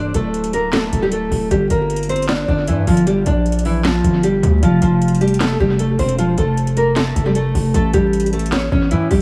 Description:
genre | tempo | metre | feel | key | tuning
hip hop, trap | 154 BPM | 4/4 | half-time | unclear | A4 = 440 Hz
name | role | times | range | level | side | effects
nylon-string guitar | melody | 0.0-9.2 s | E3 to D5 | -20 LUFS | equal | tape echo
distorted 808-style bass | bass | 0.0-9.2 s | C1 to A2 | -20 LUFS | equal | distortion
trap drum kit | drums | 0.1-9.2 s | handclaps, hi-hat, snare drum | -27 LUFS | equal | overdrive, tape echo
room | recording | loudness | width
light reverb | echo-heavy mix, vinyl crackle | -17 LUFS | mono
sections
0.0-9.2 A section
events
none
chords
0.0 D5; 1.5 Gm7; 4.6 F; 7.7 A7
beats
0.34 0.73 1.12 | 1.51 1.90 2.29 2.68 | 3.07 3.46 3.85 4.24 | 4.63 5.02 5.41 5.79 | 6.18 6.57 6.96 7.35 | 7.74 8.13 8.52 8.91

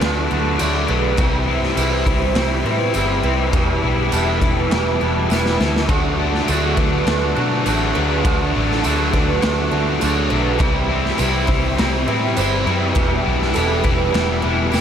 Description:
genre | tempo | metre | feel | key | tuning
rock, shoegaze and dream pop | 102 BPM | 4/4 | straight | D major | A4 = 439 Hz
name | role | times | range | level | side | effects
lush unison pad | sustained chords | 0.0-14.8 s | G4 to D6 | -29 LUFS | left 1 dB | chorus
picked twelve-string acoustic guitar | arpeggios | 0.0-14.8 s | F#4 to C#5 | -26 LUFS | right 10 dB | wide subtle chorus, slapback echo
biting overdriven guitar | riff | 0.0-14.8 s | C3 to E4 | -22 LUFS | left 9 dB | analog chorus
twangy electric guitar | riff | 0.0-14.8 s | E2 to F#4 | -25 LUFS | right 9 dB | reverse reverb
vintage muted picked electric bass | bass | 0.0-14.8 s | E1 to B2 | -22 LUFS | equal | none
raw garage drum kit | drums | 0.0-14.8 s | crash cymbal, kick drum, snare drum | -22 LUFS | equal | none
tambourine | percussion | 0.6-14.8 s | none | -34 LUFS | right 13 dB | none
tight distorted guitar | riff | 5.9-14.8 s | C3 to E4 | -26 LUFS | equal | distortion
room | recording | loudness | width
light reverb, small room ambience | none | -16 LUFS | side -8 dB against mid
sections
0.0-14.8 A section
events
drum fill 5.3-5.9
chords
0.0 Dmaj7; 1.2 Cmaj7; 3.5 Em7; 5.9 Dmaj7; 10.6 Cmaj7; 13.0 Em7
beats
0.01 0.60 | 1.19 1.77 2.36 2.95 | 3.54 4.13 4.72 5.31 | 5.90 6.48 7.07 7.66 | 8.25 8.84 9.43 10.02 | 10.61 11.19 11.78 12.37 | 12.96 13.55 14.14 14.73

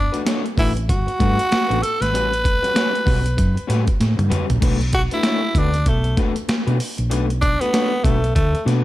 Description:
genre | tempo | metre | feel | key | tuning
funk | 96 BPM | 4/4 | swing 60% on 16ths | B minor | A4 = 441 Hz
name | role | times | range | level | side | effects
growling tenor saxophone | melody | 0.0-8.6 s | A3 to B4 | -21 LUFS | equal | none
hollow-body short-scale fingered electric bass | bass | 0.0-8.8 s | G1 to B2 | -20 LUFS | equal | none
electric guitar at the edge of break-up | accompaniment | 0.1-8.8 s | G3 to C#5 | -26 LUFS | left 4 dB | none
breakbeat sampler-style drum kit | drums | 0.1-8.8 s | crash cymbal, hi-hat, kick drum, snare drum, toms | -21 LUFS | equal | none
room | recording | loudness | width
digital ambience | none | -16 LUFS | side -15 dB against mid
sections
0.0-4.6 A section; 4.6-8.8 B section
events
drum fill 4.0-4.6; tenor saxophone solo 4.6-8.8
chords
0.0 Gmaj9; 2.1 A13; 4.6 Bm7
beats
0.27 0.89 1.51 | 2.13 2.76 3.38 4.00 | 4.62 5.25 5.87 6.49 | 7.11 7.74 8.36

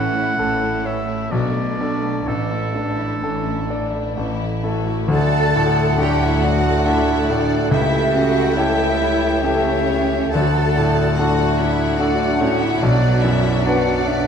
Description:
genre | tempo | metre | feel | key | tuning
classical, romantic movement for piano and orchestra | 62-73 BPM | 3/4 | rubato | D major | A4 = 440 Hz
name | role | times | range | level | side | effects
clear chamber violin section | melody | 0.0-14.3 s | D4 to A5 | -31 LUFS | left 6 dB | none
clear concert grand piano | melody | 0.0-14.3 s | A1 to D5 | -20 LUFS | left 1 dB | none
clear oboe | second line | 0.0-14.3 s | A4 to G5 | -28 LUFS | right 1 dB | none
rich chamber violin section | second line | 0.0-14.3 s | B3 to G5 | -30 LUFS | left 5 dB | none
clear symphonic viola section | accompaniment | 0.0-14.3 s | E3 to A4 | -29 LUFS | right 2 dB | none
rich chamber cello section | bass | 0.0-14.3 s | A2 to A4 | -24 LUFS | right 4 dB | none
rich chamber double bass section | bass | 0.0-14.3 s | A1 to D2 | -26 LUFS | right 3 dB | none
bright silver concert flute | second line | 5.1-14.3 s | C#5 to F#5 | -27 LUFS | left 1 dB | none
mellow bassoon | accompaniment | 5.1-14.3 s | F#3 to A3 | -27 LUFS | right 3 dB | none
mellow French horn section | sustained chords | 5.1-14.3 s | A3 to G4 | -27 LUFS | left 6 dB | none
room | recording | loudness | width
wet scoring stage reverb, RT60 1.7 s | dark, warm production | -16 LUFS | side -7 dB against mid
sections
0.0-5.1 A section; 5.1-14.3 B section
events
none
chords
0.0 A; 1.3 Bm7; 2.3 Asus4; 5.1 D; 7.7 A7/C#; 10.3 D; 12.8 Bm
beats
0.39 1.31 | 2.26 3.21 4.17 | 5.11 6.00 6.88 | 7.73 8.57 9.43 | 10.32 11.16 11.99 | 12.82 13.65

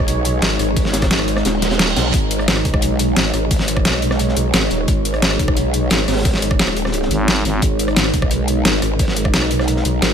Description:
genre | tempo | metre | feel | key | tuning
dark technical drum and bass | 175 BPM | 4/4 | straight | G# minor | A4 = 441 Hz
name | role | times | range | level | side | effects
deep dark ambient pad | sustained chords | 0.0-10.1 s | G#3 to C#5 | -21 LUFS | right 1 dB | chorus, built-in reverb, sidechain pumping
growl bass | bass | 0.0-10.1 s | D#1 to B1 | -20 LUFS | equal | chorus, sidechain pumping
crunchy breakbeat drum kit | drums | 0.1-10.1 s | hi-hat, snare drum | -27 LUFS | equal | high-pass filter on hats, small room reverb, high-pass filter on snare, high-pass filter on room
dubstep drum kit | drums | 0.1-10.1 s | hi-hat, rim click, snare drum | -19 LUFS | equal | overdrive, small room reverb
electronic kick drum | drums | 0.8-9.3 s | none | -19 LUFS | equal | overdrive, small room reverb
reverse cymbal | sound effects | 1.6-2.1 s | none | -25 LUFS | right 5 dB | none
growling FM bass | bass | 7.1-7.6 s | G#1 | -18 LUFS | equal | none
room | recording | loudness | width
light reverb | none | -14 LUFS | side -8 dB against mid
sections
0.0-10.1 A section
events
reverse cymbal 1.6-2.1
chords
0.0 G#5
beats
0.08 0.42 | 0.77 1.11 1.45 1.79 | 2.14 2.48 2.82 3.17 | 3.51 3.85 4.19 4.54 | 4.88 5.22 5.57 5.91 | 6.25 6.59 6.94 7.28 | 7.62 7.96 8.31 8.65 | 8.99 9.34 9.68 10.02

